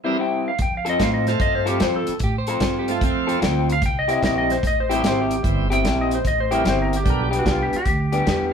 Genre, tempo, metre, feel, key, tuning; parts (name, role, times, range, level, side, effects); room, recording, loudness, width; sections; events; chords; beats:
electric blues shuffle; 148 BPM; 4/4; swing 66% on 8ths; C major; A4 = 440 Hz
bright tonewheel organ; accompaniment; 0.0-7.3 s; D3 to Bb4; -27 LUFS; right 5 dB; overdrive, slow rotary speaker
electric guitar through a small old amp; riff; 0.0-8.5 s; C3 to A4; -23 LUFS; left 2 dB
clean lap steel guitar; melody; 0.2-8.5 s; F4 to G5; -24 LUFS; left 1 dB
upright bass; bass; 0.6-8.5 s; G1 to A2; -25 LUFS; right 1 dB
warm soul drum kit; drums; 0.6-8.4 s; hi-hat, kick drum, snare drum; -25 LUFS; equal
electric slide guitar; second line; 2.2-3.4 s; C4 to C5; -28 LUFS; right 6 dB
moderate studio reverb, RT60 0.8 s; band playing live in one room; -18 LUFS; side -7 dB against mid
0.0-8.5 A section
0.0 C; 0.6 F; 3.8 C; 7.1 G
0.18 | 0.59 0.99 1.40 1.80 | 2.20 2.61 3.01 3.42 | 3.82 4.22 4.63 5.03 | 5.44 5.84 6.24 6.65 | 7.05 7.46 7.86 8.26